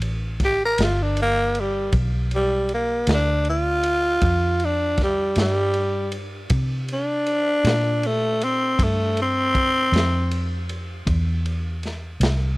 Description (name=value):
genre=slow blues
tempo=52 BPM (dotted quarters)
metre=12/8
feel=straight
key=unclear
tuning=A4 = 440 Hz
part: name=vintage muted fingered electric bass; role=bass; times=0.0-12.6 s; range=G1 to C3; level=-24 LUFS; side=equal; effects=none
part: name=crunchy breakbeat drum kit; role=drums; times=0.0-12.4 s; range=kick drum, ride cymbal, snare drum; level=-28 LUFS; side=equal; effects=none
part: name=growling tenor saxophone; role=melody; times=0.4-10.7 s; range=G3 to Bb4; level=-21 LUFS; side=equal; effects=tape echo
room=little or no reverb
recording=dry, close 1970s-style studio recording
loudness=-19 LUFS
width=side -21 dB against mid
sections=0.0-12.6 A section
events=tenor saxophone solo 0.0-12.6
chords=0.0 G7; 6.5 C7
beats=0.78 | 1.93 3.07 4.22 5.37 | 6.51 7.65 8.80 9.94 | 11.08 12.23